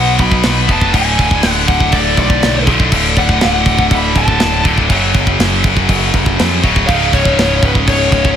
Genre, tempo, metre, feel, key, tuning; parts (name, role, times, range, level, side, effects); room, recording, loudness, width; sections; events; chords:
heavy metal; 121 BPM; 4/4; straight; A4 = 440 Hz
high-gain lead guitar; melody; 0.0-8.4 s; B4 to B5; -17 LUFS; left 1 dB; distortion
heavy high-gain guitar; riff; 0.0-8.4 s; C#2 to B3; -14 LUFS; equal; distortion
growling picked electric bass; bass; 0.0-8.3 s; C#1 to E#2; -17 LUFS; equal; overdrive
tight metal drum kit; drums; 0.2-8.4 s; crash cymbal, kick drum, snare drum; -15 LUFS; equal
small room ambience; -10 LUFS; side -9 dB against mid
0.0-8.4 A section
0.0 B5; 0.9 D; 4.9 F#5; 6.9 C#5